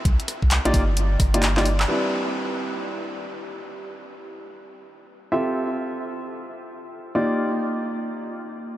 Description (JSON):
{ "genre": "UK garage, two-step garage", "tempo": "131 BPM", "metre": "4/4", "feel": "swing 63% on 16ths", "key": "unclear", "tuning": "A4 = 437 Hz", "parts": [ { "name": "saturated sub bass", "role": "bass", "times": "0.1-1.9 s", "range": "G1 to C2", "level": "-22 LUFS", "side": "equal", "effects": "none" }, { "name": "electronic kick drum", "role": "drums", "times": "0.1-1.3 s", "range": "none", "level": "-21 LUFS", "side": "equal", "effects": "overdrive" }, { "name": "punchy analog drum machine", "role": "drums", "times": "0.1-1.9 s", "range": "handclaps, hi-hat, rim click, woodblock", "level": "-28 LUFS", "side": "equal", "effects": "none" }, { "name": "warm grand piano", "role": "stabs", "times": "0.7-8.8 s", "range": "G3 to E5", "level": "-26 LUFS", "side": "equal", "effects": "low-pass filter, diffuse ambient delay" } ], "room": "moderate huge ambient reverb, RT60 7.1 s", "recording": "dreamy mix soaked in reverb", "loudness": "-21 LUFS", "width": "side -14 dB against mid", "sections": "0.0-1.9 A section; 1.9-8.8 B section", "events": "kick drops out 1.4-1.9; drum fill 1.5-1.9; band accent 1.8", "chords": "0.0 Cm11; 1.9 Cmaj9/G; 5.3 Fmaj9/C; 7.2 D#maj9/A#" }